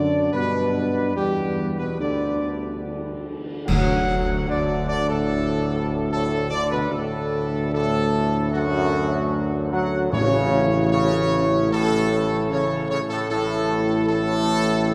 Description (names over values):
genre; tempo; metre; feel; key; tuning
classical, ceremonial fanfare; 75 BPM; 4/4; straight; D major; A4 = 440 Hz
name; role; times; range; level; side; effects
clear trumpet section; melody; 0.0-14.9 s; F#4 to F#5; -28 LUFS; equal; none
mellow French horn section; sustained chords; 0.0-14.9 s; G3 to E4; -29 LUFS; equal; none
warm trombone section; sustained chords; 0.0-14.9 s; F#2 to F#3; -29 LUFS; equal; none
mellow tuba; bass; 0.0-14.9 s; A1 to G2; -28 LUFS; equal; none
cymbal swell, clash cymbals and concert bass drum; percussion; 0.3-5.3 s; none; -33 LUFS; equal; none
timpani; percussion; 3.7-4.9, 10.1-11.3 s; A2 to D3; -33 LUFS; equal; none
room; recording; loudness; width
wet cathedral reverb, RT60 6.8 s; none; -22 LUFS; mono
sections
0.0-3.7 A section; 3.7-14.9 A section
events
band accent 3.7-4.5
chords
0.3 G; 2.0 N.C.; 3.7 D; 10.1 A